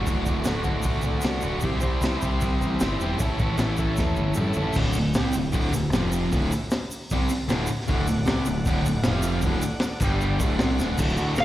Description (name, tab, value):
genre	garage rock duo or trio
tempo	154 BPM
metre	4/4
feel	straight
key	unclear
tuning	A4 = 439 Hz
part	combo organ	sustained chords	0.0-4.7, 7.9-11.4 s	F4 to G5	-36 LUFS	equal	none
part	overdriven electric guitar	riff	0.0-11.4 s	D2 to C5	-25 LUFS	equal	slapback echo
part	growling picked electric bass	bass	0.0-11.4 s	D1 to G2	-27 LUFS	equal	overdrive, tube saturation
part	crunchy breakbeat drum kit	drums	0.1-11.4 s	crash cymbal, hi-hat, kick drum, snare drum, toms	-27 LUFS	equal	none
part	egg shaker	percussion	0.1-11.4 s	none	-39 LUFS	right 2 dB	none
part	overdriven slide guitar	melody	11.4 s	F5	-19 LUFS	left 1 dB	none
room	light reverb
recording	live gig heard through the venue's PA, recital hall reverb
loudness	-22 LUFS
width	side -14 dB against mid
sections	0.0-4.8 A section; 4.8-11.0 B section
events	drum fill 4.0-4.8, 10.8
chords	0.0 D; 1.6 C; 3.2 A7; 4.8 D5; 5.9 F5; 6.3 D; 9.0 F5; 9.4 D; 10.0 G5; 10.4 D